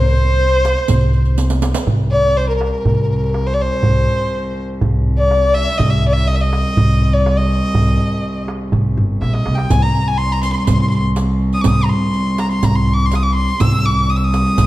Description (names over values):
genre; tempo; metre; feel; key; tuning
Arabic maqam ensemble; 123 BPM; 4/4; straight; C maqam saba; A4 = 440 Hz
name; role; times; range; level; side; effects
rich violin; melody; 0.0-14.7 s; Bb4 to E6; -19 LUFS; left 1 dB; none
breathy clarinet; second line; 0.0-1.4 s; C5; -25 LUFS; left 6 dB; none
upright bass; bass; 0.0-14.7 s; G1 to C2; -17 LUFS; equal; none
darbuka; percussion; 0.2-14.7 s; none; -19 LUFS; right 1 dB; none
riq; percussion; 0.2-1.9, 9.7-14.7 s; none; -26 LUFS; right 4 dB; none
dark cello; drone; 1.9-14.7 s; C2; -21 LUFS; equal; none
room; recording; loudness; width
wet recital hall reverb, RT60 1.6 s; dark, warm production; -13 LUFS; side -16 dB against mid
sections
0.0-1.9 A section; 1.9-14.7 B section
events
drum fill 1.4-1.9, 9.2-9.7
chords
none